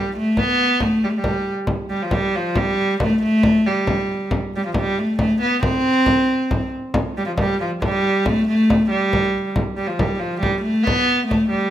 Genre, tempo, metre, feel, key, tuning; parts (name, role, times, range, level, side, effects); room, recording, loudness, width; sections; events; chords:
medieval dance; 91 BPM (dotted quarters); 6/8; straight; A4 = 439 Hz
rich viola da gamba; melody; 0.0-11.7 s; F3 to C4; -18 LUFS; equal
frame drum; percussion; 0.2-11.6 s; -23 LUFS; left 1 dB
moderate recital hall reverb, RT60 1.3 s; close, detailed microphones; -17 LUFS; side -11 dB against mid
0.0-6.9 A section; 6.9-11.7 A section